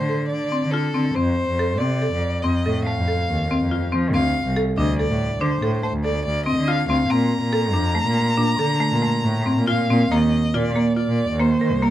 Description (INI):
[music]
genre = contemporary instrumental, chamber music in an uneven meter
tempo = 141 BPM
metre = 7/4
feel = straight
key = Bb major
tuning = A4 = 440 Hz
[part]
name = clear violin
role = melody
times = 0.0-11.9 s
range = A4 to Bb5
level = -26 LUFS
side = left 1 dB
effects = none
[part]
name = rich cello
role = bass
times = 0.0-11.9 s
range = C2 to F3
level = -22 LUFS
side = equal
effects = none
[part]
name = buzzing marimba with hard mallets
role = arpeggios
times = 0.1-11.9 s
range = A3 to Bb4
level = -22 LUFS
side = equal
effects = none
[sound]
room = light reverb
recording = dark, warm production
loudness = -18 LUFS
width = side -12 dB against mid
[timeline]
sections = 0.0-10.1 A section; 10.1-11.9 B section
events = none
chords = 0.0 D7(no3); 1.2 F; 4.1 Dm7; 7.1 Bbmaj9; 10.1 Ebsus2